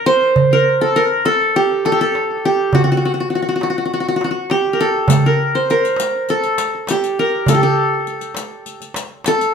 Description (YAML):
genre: Arabic maqam ensemble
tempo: 101 BPM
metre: 4/4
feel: straight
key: unclear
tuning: A4 = 440 Hz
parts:
  - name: qanun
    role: melody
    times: 0.0-9.5 s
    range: F#4 to C5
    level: -15 LUFS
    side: equal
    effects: none
  - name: darbuka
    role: percussion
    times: 0.1-9.4 s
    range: none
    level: -18 LUFS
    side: right 2 dB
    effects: none
  - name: riq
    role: percussion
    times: 5.1-9.5 s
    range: none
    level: -25 LUFS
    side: left 6 dB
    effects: none
room: moderate studio reverb, RT60 0.6 s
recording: none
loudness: -14 LUFS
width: side -6 dB against mid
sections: 0.0-9.5 A section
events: none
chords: none